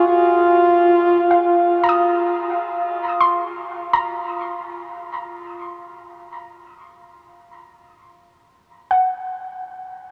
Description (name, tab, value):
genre	ambient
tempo	free time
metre	none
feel	none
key	Eb dorian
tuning	A4 = 440 Hz
part	mellow flugelhorn	melody	0.0-2.0 s	F4	-19 LUFS	equal	diffuse ambient delay
part	soft round pluck	arpeggios	1.3-5.1, 8.9-10.1 s	F5 to Eb6	-24 LUFS	equal	lush chorus, diffuse ambient delay
room	wet huge ambient reverb, RT60 8.1 s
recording	none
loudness	-18 LUFS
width	mono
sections	0.0-2.5 A section; 2.5-10.1 B section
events	none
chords	0.0 Bb5; 2.5 Ebm (rootless)